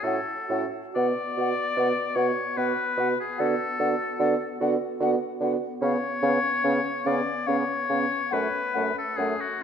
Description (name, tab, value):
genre	classical, slow romantic movement for wind quintet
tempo	73 BPM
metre	3/4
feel	uneven beats, rubato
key	unclear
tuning	A4 = 441 Hz
part	clear oboe	second line	0.0-9.6 s	F#4 to D5	-28 LUFS	left 4 dB	none
part	warm French horn	accompaniment	0.0-9.4 s	A3 to C#4	-32 LUFS	left 1 dB	none
part	warm clarinet	accompaniment	0.0-9.6 s	C#4 to F#4	-32 LUFS	right 10 dB	none
part	warm bassoon	bass	0.0-9.3 s	F#2 to D3	-29 LUFS	right 2 dB	none
part	mellow silver concert flute	melody	0.1-9.3 s	E#5 to F#5	-33 LUFS	left 7 dB	none
room	wet concert hall reverb, RT60 2.0 s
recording	none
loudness	-23 LUFS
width	side -8 dB against mid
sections	0.0-9.6 A section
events	none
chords	0.0 F#m/A; 1.0 Bm; 3.4 Bm/D; 5.8 C#7; 8.3 F#m